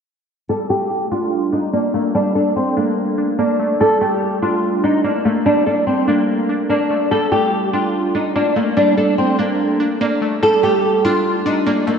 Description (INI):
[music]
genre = hip hop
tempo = 145 BPM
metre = 4/4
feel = half-time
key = G minor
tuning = A4 = 439 Hz
[part]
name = flamenco guitar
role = melody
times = 0.5-12.0 s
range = Bb3 to A4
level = -16 LUFS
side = equal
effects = ensemble chorus, low-pass filter, analog delay
[part]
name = glassy digital keys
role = accompaniment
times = 0.5-12.0 s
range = G3 to A4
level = -20 LUFS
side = right 1 dB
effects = chorus, low-pass filter
[sound]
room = wet lush hall reverb, RT60 2.9 s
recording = dreamy mix soaked in reverb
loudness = -15 LUFS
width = side -6 dB against mid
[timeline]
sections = 0.5-12.0 A section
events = filter sweep 0.5-12.0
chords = 0.5 Gmadd9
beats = | 0.49 0.91 1.32 1.73 | 2.15 2.56 2.98 3.39 | 3.80 4.22 4.63 5.04 | 5.46 5.87 6.29 6.70 | 7.11 7.53 7.94 8.35 | 8.77 9.18 9.60 10.01 | 10.42 10.84 11.25 11.66